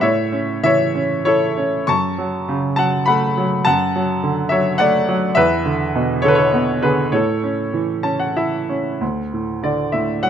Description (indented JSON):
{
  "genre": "classical, lyrical solo piano",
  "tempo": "89-106 BPM",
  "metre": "3/4",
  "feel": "rubato",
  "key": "D major",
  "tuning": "A4 = 442 Hz",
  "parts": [
    { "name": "bright baby grand piano", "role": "solo", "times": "0.0-10.3 s", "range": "D2 to C#6", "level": "-16 LUFS", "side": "equal", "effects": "none" }
  ],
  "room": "light reverb",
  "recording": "close, detailed microphones",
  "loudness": "-16 LUFS",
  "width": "side -8 dB against mid",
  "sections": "0.0-9.0 A section; 9.0-10.3 B section",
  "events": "grand piano fill 7.7-9.0",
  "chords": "0.0 A; 1.9 F#m; 3.7 D/F#; 5.4 E7; 7.1 A; 9.0 D5"
}